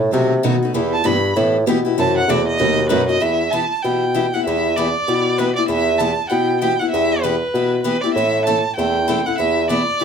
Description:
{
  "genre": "acoustic string swing (jazz manouche)",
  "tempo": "194 BPM",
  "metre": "4/4",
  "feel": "swing 60% on 8ths",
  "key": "E minor",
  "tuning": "A4 = 440 Hz",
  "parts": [
    { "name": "warm bassoon", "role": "bass", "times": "0.0-9.9 s", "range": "D#2 to C3", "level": "-19 LUFS", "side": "equal", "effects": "none" },
    { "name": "picked steel-string acoustic guitar", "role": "accompaniment", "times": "0.1-10.0 s", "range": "B2 to A4", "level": "-22 LUFS", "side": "left 5 dB", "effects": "none" },
    { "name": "picked steel-string acoustic guitar", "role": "accompaniment", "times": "0.1-3.0 s", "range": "B2 to B4", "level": "-22 LUFS", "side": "right 2 dB", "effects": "none" },
    { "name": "warm violin", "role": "melody", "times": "0.9-10.0 s", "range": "B4 to B5", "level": "-20 LUFS", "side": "right 3 dB", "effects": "none" }
  ],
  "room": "wet small room ambience, RT60 0.5 s",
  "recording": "heard from further back in the room",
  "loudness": "-15 LUFS",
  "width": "side -6 dB against mid",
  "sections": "0.0-3.2 A section; 3.2-10.0 B section",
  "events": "violin solo 0.0-3.2",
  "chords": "0.0 B7b9; 0.8 Em; 2.0 F#m7b5; 2.6 B7; 3.2 Em; 8.2 Am; 9.4 Em",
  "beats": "0.13 0.44 | 0.75 1.06 1.37 1.67 | 1.98 2.29 2.60 2.91 | 3.21 3.52 3.83 4.14 | 4.45 4.76 5.07 5.38 | 5.69 6.00 6.30 6.61 | 6.92 7.23 7.54 7.85 | 8.16 8.47 8.78 9.09 | 9.40 9.71 10.02"
}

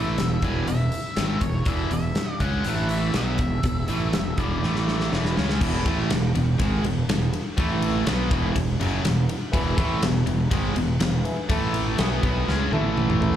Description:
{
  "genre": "classic rock",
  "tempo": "122 BPM",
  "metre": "4/4",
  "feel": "straight",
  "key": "E major",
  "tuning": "A4 = 440 Hz",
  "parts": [
    { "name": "octave-fuzz lead guitar", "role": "melody", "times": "0.0-5.1 s", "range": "C#5 to G#5", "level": "-32 LUFS", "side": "left 2 dB", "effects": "distortion, slapback echo, digital delay" },
    { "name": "distorted electric guitar", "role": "riff", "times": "0.0-13.4 s", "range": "E2 to C#4", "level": "-28 LUFS", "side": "right 8 dB", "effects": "distortion, slapback echo" },
    { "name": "tight distorted guitar", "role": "riff", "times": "0.0-13.4 s", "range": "E2 to C#4", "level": "-28 LUFS", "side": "left 7 dB", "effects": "distortion, slapback echo" },
    { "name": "fuzz fingered electric bass", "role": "bass", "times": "0.0-13.4 s", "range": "E1 to C#2", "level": "-26 LUFS", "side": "equal", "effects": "overdrive" },
    { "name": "huge arena drum kit", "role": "drums", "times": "0.2-13.3 s", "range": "crash cymbal, hi-hat, kick drum, ride cymbal, snare drum, toms", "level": "-26 LUFS", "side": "equal", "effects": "none" },
    { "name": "mellow reed electric piano", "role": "accompaniment", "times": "9.5-13.4 s", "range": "A4 to A5", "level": "-33 LUFS", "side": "left 3 dB", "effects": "medium tremolo, slapback echo" }
  ],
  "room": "light reverb",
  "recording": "live gig heard through the venue's PA, club reverb",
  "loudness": "-21 LUFS",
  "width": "side -10 dB against mid",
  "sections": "0.0-5.6 A section; 5.6-13.4 B section",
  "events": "drum fill 4.6-5.6, 12.5-13.4",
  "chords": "0.0 E; 2.7 A5; 3.1 E5; 4.6 A5; 5.1 E; 7.6 A5; 8.1 E; 11.5 A5; 12.0 E; 12.7 A5",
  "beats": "0.18 0.68 1.17 | 1.67 2.16 2.65 3.15 | 3.64 4.14 4.63 5.12 | 5.61 6.10 6.59 7.09 | 7.58 8.07 8.56 9.05 | 9.54 10.03 10.52 11.01 | 11.50 11.99 12.48 12.97"
}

